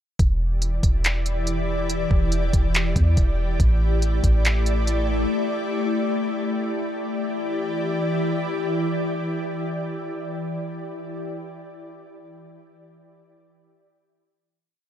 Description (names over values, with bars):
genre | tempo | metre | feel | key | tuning
hip hop, atmospheric cloud-rap | 141 BPM | 4/4 | half-time | E minor | A4 = 441 Hz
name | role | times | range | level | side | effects
ethereal airy pad | sustained chords | 0.6-11.2 s | E3 to D5 | -25 LUFS | left 1 dB | ensemble chorus, built-in reverb, sidechain pumping
soft 808-style bass | bass | 0.2-5.3 s | E1 to E2 | -22 LUFS | equal | none
smooth R&B drum kit | drums | 0.2-5.0 s | handclaps, hi-hat, kick drum | -21 LUFS | equal | none
room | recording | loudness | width
digital ambience | dark, warm production | -21 LUFS | side -10 dB against mid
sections
0.2-7.0 verse; 7.0-10.4 final chord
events
none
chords
0.2 Em7; 3.6 A7sus4; 7.0 Em7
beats
| 0.19 0.62 1.04 1.47 | 1.90 2.32 2.75 3.17 | 3.60 4.02 4.45 4.87 | 5.30 5.73 6.15 6.58 | 7.00 7.43 7.85 8.28 | 8.70 9.13 9.55 9.98